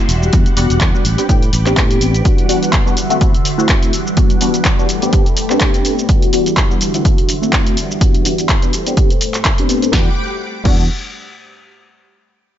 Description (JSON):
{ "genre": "filtered disco house", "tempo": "125 BPM", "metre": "4/4", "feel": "swing 56% on 16ths", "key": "E minor", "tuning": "A4 = 439 Hz", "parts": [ { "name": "funky polysynth comp", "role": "accompaniment", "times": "0.0-10.8 s", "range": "G3 to A4", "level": "-18 LUFS", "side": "left 1 dB", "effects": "chorus, phaser, sidechain pumping, low-pass filter" }, { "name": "string machine, full ensemble", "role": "sustained chords", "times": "0.0-10.2 s", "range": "D3 to D6", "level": "-22 LUFS", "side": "equal", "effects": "phaser, ensemble chorus, sidechain pumping, low-pass filter" }, { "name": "fingered electric bass", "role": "bass", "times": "0.1-2.2, 9.9-10.9 s", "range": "E1 to A2", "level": "-16 LUFS", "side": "equal", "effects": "sidechain pumping, low-pass filter" }, { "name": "punchy analog drum machine", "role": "drums", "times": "0.1-10.8 s", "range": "crash cymbal, handclaps, hi-hat, shaker, snare drum", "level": "-20 LUFS", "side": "equal", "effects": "none" }, { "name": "electronic kick drum", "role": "drums", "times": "0.3-10.8 s", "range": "none", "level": "-14 LUFS", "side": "equal", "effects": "none" } ], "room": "digital ambience", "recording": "nothing above 7.7 kHz", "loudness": "-12 LUFS", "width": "side -11 dB against mid", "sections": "0.0-9.9 A section; 9.9-11.9 B section", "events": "filter sweep 0.0-9.9", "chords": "0.1 Em9; 1.1 Am11; 2.3 Em9; 3.0 D9; 3.9 Em9; 4.9 Am11; 6.1 Em9; 6.8 D9; 7.8 Em9; 8.7 Am11; 9.9 Em9" }